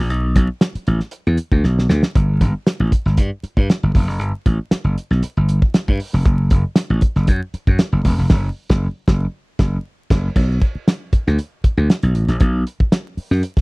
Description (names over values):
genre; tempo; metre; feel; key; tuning
funk; 117 BPM; 4/4; straight; unclear; A4 = 440 Hz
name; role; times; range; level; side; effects
slap bass; bass; 0.0-13.4 s; E1 to G2; -16 LUFS; equal; none
cloth-damped thuddy drum kit; drums; 0.1-13.6 s; crash cymbal, hi-hat, kick drum, snare drum; -15 LUFS; equal; none
room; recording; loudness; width
little or no reverb; dry, close 1970s-style studio recording, vinyl crackle; -15 LUFS; side -32 dB against mid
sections
0.0-2.1 A section; 2.1-10.4 B section; 10.4-13.6 C section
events
drum fill 1.6-2.1; band accent 8.3-10.4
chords
none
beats
| 0.10 0.61 1.12 1.64 | 2.15 2.66 3.17 3.69 | 4.20 4.71 5.23 5.74 | 6.25 6.77 7.28 7.79 | 8.31 8.82 9.33 9.84 | 10.36 10.87 11.38 11.89 | 12.40 12.91 13.43